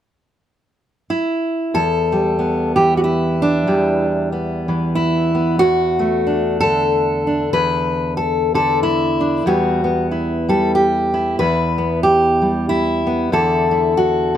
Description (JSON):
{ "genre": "folk, solo fingerstyle acoustic guitar", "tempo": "93 BPM", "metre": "3/4", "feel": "swing 58% on 8ths", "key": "E minor", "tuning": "A4 = 440 Hz", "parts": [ { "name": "fingerpicked steel-string acoustic guitar", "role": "solo", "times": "1.1-14.4 s", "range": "E2 to B4", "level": "-15 LUFS", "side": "equal", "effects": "none" } ], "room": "light reverb", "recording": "none", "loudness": "-15 LUFS", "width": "side -10 dB against mid", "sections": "0.0-1.7 A section; 1.7-14.4 B section", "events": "none", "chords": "0.0 N.C.; 1.7 Em; 5.6 Dadd9/E; 9.5 Emadd9; 13.3 Dadd9/E", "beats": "0.46 1.10 | 1.74 2.38 3.03 | 3.67 4.31 4.96 | 5.60 6.25 6.89 | 7.53 8.18 8.82 | 9.46 10.11 10.75 | 11.40 12.04 12.69 | 13.33 13.97" }